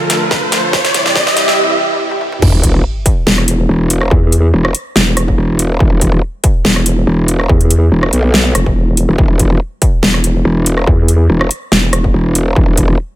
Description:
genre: heavy wobble dubstep.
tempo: 142 BPM.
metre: 4/4.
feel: swing 54% on 16ths, half-time.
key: E phrygian.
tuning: A4 = 440 Hz.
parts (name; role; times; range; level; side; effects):
supersaw pad; sustained chords; 0.0-2.4 s; C3 to A4; -18 LUFS; right 1 dB; phaser, vintage 12-bit sampler grit, sidechain pumping, low-pass filter.
riser and sub drop; sound effects; 0.0-4.1 s; none; -16 LUFS; equal; none.
dubstep drum kit; drums; 0.1-12.9 s; crash cymbal, hi-hat, rim click, snare drum, toms; -15 LUFS; equal; high-pass filter on snare, high-pass filter on hats, high-pass filter on toms, high-pass filter on cymbals.
electronic kick drum; drums; 0.3-12.9 s; none; -13 LUFS; equal; distortion.
growl bass; bass; 2.4-13.0 s; E1 to B1; -12 LUFS; equal; chorus, overdrive.
vowel-sweep wobble bass; bass; 3.3-12.1 s; E1 to E2; -12 LUFS; equal; chorus, overdrive.
room: little or no reverb.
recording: high-pass filter.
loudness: -10 LUFS.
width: side -14 dB against mid.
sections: 0.0-2.4 A section; 2.4-13.2 B section.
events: build-up 0.0-2.4; drum fill 0.0-1.6, 2.1-2.4; riser 0.0-1.6; filter sweep on supersaw synth 0.0-2.4; filter sweep 0.0-2.4; break 1.6-2.4; drop 2.4-13.2; impact 2.4-4.1.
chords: 0.0 Dm; 0.7 C; 2.4 E5.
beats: 0.31 | 0.73 1.16 1.58 2.00 | 2.42 2.85 3.27 3.69 | 4.11 4.54 4.96 5.38 | 5.80 6.23 6.65 7.07 | 7.49 7.92 8.34 8.76 | 9.18 9.61 10.03 10.45 | 10.87 11.30 11.72 12.14 | 12.56.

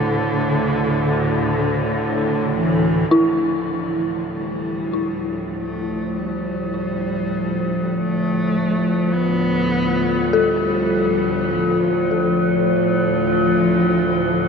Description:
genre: ambient.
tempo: free time.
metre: none.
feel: none.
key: D dorian.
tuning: A4 = 440 Hz.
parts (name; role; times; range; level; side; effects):
dark cello; melody; 0.0-14.5 s; D3 to B3; -23 LUFS; equal; ping-pong delay.
bowed-like drone; drone; 0.0-14.5 s; D2 to A2; -24 LUFS; right 1 dB; built-in reverb.
dark detuned synth bell; arpeggios; 3.1-14.5 s; E4 to A4; -23 LUFS; left 1 dB; chorus, ping-pong delay.
metallic inharmonic drone; texture; 4.7-14.5 s; F3; -20 LUFS; left 1 dB; chorus, built-in reverb.
room: wet huge ambient reverb, RT60 7.8 s.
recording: in a vast, echoing space.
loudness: -17 LUFS.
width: side -5 dB against mid.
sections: 0.0-3.1 A section; 3.1-14.5 B section.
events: fade-in on synth drone 3.1-14.5; fade-in on cello 3.1-14.5.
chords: 0.0 D5; 3.1 Dm.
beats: free time.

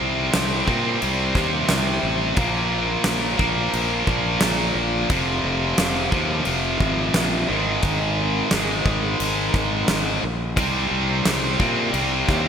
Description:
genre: hard rock.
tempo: 88 BPM.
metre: 4/4.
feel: straight.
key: unclear.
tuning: A4 = 440 Hz.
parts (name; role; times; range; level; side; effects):
heavy high-gain guitar; riff; 0.0-12.5 s; F2 to C4; -21 LUFS; equal; distortion.
fuzz fingered electric bass; bass; 0.0-12.5 s; F1 to Bb2; -26 LUFS; equal; overdrive.
huge arena drum kit; drums; 0.3-12.4 s; crash cymbal, kick drum, snare drum; -25 LUFS; equal; gated reverb.
room: moderate lush hall reverb, RT60 3.1 s.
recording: bright 1980s-style digital production.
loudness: -19 LUFS.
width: side -7 dB against mid.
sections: 0.0-12.5 A section.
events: none.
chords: 0.0 Cm; 2.4 Bb5; 5.1 Fm; 7.5 Ab5; 10.6 C5.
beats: 0.34 1.02 1.70 | 2.38 3.06 3.74 4.42 | 5.10 5.79 6.47 7.15 | 7.83 8.52 9.20 9.89 | 10.57 11.26 11.95.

